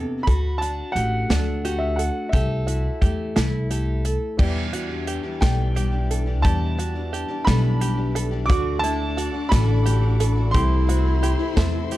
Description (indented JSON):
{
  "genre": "indie folk with a building arrangement",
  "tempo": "58 BPM (dotted quarters)",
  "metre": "6/8",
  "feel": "straight",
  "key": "E minor",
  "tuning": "A4 = 436 Hz",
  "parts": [
    { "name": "fingerpicked steel-string acoustic guitar", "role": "accompaniment", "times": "0.0-4.4 s", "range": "C3 to A4", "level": "-29 LUFS", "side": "left 2 dB", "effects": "plate reverb" },
    { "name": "open-back banjo", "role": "arpeggios", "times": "0.0-12.0 s", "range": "E4 to A4", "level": "-32 LUFS", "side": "right 6 dB", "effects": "plate reverb" },
    { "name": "upright bass", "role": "bass", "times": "0.0-12.0 s", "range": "A1 to E2", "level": "-22 LUFS", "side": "equal", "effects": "none" },
    { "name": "warm upright piano", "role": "melody", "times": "0.2-12.0 s", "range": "E5 to D6", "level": "-28 LUFS", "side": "right 1 dB", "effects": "plate reverb" },
    { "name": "natural country drum kit", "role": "drums", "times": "0.3-12.0 s", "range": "crash cymbal, hi-hat, kick drum, snare drum", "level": "-23 LUFS", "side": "equal", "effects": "none" },
    { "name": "dark baby grand piano", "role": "accompaniment", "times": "4.4-12.0 s", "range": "C2 to D5", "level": "-34 LUFS", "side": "right 2 dB", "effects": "plate reverb" },
    { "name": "picked twelve-string acoustic guitar", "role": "accompaniment", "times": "4.4-12.0 s", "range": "E2 to G4", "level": "-31 LUFS", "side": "left 6 dB", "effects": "plate reverb" },
    { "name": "reedy pan flute", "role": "second line", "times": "7.5-12.0 s", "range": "D4 to F#4", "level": "-28 LUFS", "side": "left 1 dB", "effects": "plate reverb" },
    { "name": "warm symphonic string section", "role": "sustained chords", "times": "8.5-12.0 s", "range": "A4 to D6", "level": "-37 LUFS", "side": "left 1 dB", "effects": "plate reverb" }
  ],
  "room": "little or no reverb",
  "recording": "dark, warm production",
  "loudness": "-19 LUFS",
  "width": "side -15 dB against mid",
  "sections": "0.0-4.4 A section; 4.4-12.0 B section",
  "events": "none",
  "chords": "0.3 D; 2.3 Am/C; 4.4 Em7; 8.5 D; 10.5 Am/C",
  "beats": "| 0.27 1.30 | 2.33 3.36 | 4.39 5.42 | 6.45 7.47 | 8.50 9.52 | 10.55 11.57"
}